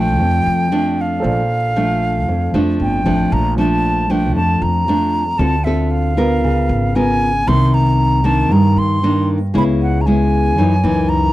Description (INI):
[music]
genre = bossa nova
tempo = 116 BPM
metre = 4/4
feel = straight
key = Bb major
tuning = A4 = 441 Hz
[part]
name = silver concert flute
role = melody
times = 0.0-11.3 s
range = E5 to C6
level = -20 LUFS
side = right 1 dB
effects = none
[part]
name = nylon-string guitar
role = accompaniment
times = 0.0-11.3 s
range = F2 to Bb4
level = -16 LUFS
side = equal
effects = none
[part]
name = warm baby grand piano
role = accompaniment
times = 0.0-3.3 s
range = A4 to F5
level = -29 LUFS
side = right 3 dB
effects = none
[part]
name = upright bass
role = bass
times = 0.0-11.3 s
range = G1 to G2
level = -19 LUFS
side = equal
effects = none
[sound]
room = little or no reverb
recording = dry, close 1970s-style studio recording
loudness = -13 LUFS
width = side -16 dB against mid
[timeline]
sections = 0.0-3.3 A section; 3.3-11.3 A section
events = none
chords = 0.0 Bbmaj7; 5.4 Dm7; 6.4 Db6; 7.5 Cm9; 9.5 Dbm7; 10.6 Gb13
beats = 0.19 0.71 | 1.23 1.75 2.27 2.79 | 3.31 3.83 4.35 4.87 | 5.39 5.91 6.43 6.95 | 7.47 7.99 8.51 9.03 | 9.55 10.07 10.59 11.11